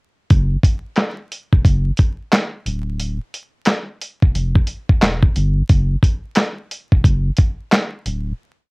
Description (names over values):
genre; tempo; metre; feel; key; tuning
hip hop, boom-bap hip-hop; 89 BPM; 4/4; swing 62% on 16ths; unclear; A4 = 440 Hz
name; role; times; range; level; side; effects
saturated sub bass; bass; 0.3-8.3 s; D1 to G1; -19 LUFS; equal; none
dusty soul sampler-style drum kit; drums; 0.3-8.3 s; handclaps, hi-hat, kick drum, snare drum; -14 LUFS; equal; cassette tape
room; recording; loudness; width
little or no reverb; home recording on cassette, vinyl crackle; -15 LUFS; side -34 dB against mid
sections
0.3-8.7 verse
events
break 8.4-8.7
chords
none